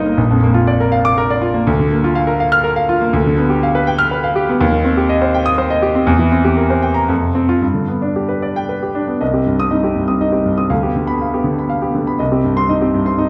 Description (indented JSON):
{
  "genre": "classical, virtuoso piano study",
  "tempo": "121 BPM",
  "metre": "3/4",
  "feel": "rubato",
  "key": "C minor from 3.1 s",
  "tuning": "A4 = 440 Hz",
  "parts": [
    { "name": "clear concert grand piano", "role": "solo", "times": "0.0-13.3 s", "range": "G1 to F6", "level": "-15 LUFS", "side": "equal", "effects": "none" }
  ],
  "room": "wet recital hall reverb, RT60 1.4 s",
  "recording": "none",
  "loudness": "-16 LUFS",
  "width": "mono",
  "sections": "0.0-9.2 A section; 9.2-13.3 B section",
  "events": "none",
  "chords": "0.2 Bb; 1.7 Bb/D; 3.1 G7/D; 4.6 Cm/Eb; 6.1 C7/E; 7.1 F5; 7.6 G; 9.2 Cm; 10.7 G7/D; 12.2 Cm"
}